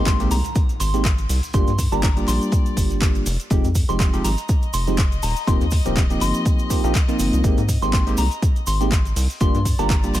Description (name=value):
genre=deep house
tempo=122 BPM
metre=4/4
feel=swing 56% on 16ths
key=unclear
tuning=A4 = 440 Hz
part: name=soft synth bell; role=melody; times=0.0-10.2 s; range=Bb5 to C6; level=-29 LUFS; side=equal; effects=chorus, phaser, ping-pong delay
part: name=bell-like tine electric piano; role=stabs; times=0.0-10.2 s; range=F3 to G4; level=-24 LUFS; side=right 1 dB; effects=phaser, sidechain pumping
part: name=rubbery square bass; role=bass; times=0.0-10.2 s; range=Eb1 to Ab2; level=-22 LUFS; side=equal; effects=tube saturation, sidechain pumping
part: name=impact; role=sound effects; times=0.0-1.5 s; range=none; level=-32 LUFS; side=equal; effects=none
part: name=cloth-damped thuddy drum kit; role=drums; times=0.1-10.2 s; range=hi-hat, snare drum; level=-41 LUFS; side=left 2 dB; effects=none
part: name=deep house drum kit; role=drums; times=0.1-10.2 s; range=handclaps, hi-hat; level=-29 LUFS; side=equal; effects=overdrive, small room ambience
part: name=electronic kick drum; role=drums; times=0.1-10.0 s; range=none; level=-19 LUFS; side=equal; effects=overdrive, small room ambience
part: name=cabasa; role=percussion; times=0.1-10.2 s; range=none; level=-34 LUFS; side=right 4 dB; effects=none
part: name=rich chamber string section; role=texture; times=2.0-10.2 s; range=D5 to Eb5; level=-36 LUFS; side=left 6 dB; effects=sidechain pumping
room=little or no reverb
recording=none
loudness=-17 LUFS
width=side -14 dB against mid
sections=0.0-10.2 A section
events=impact 0.0-1.5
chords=0.0 Abmaj7; 1.5 Gm7; 3.3 Fm9; 5.2 Eb6; 7.4 Abmaj7; 9.4 Gm7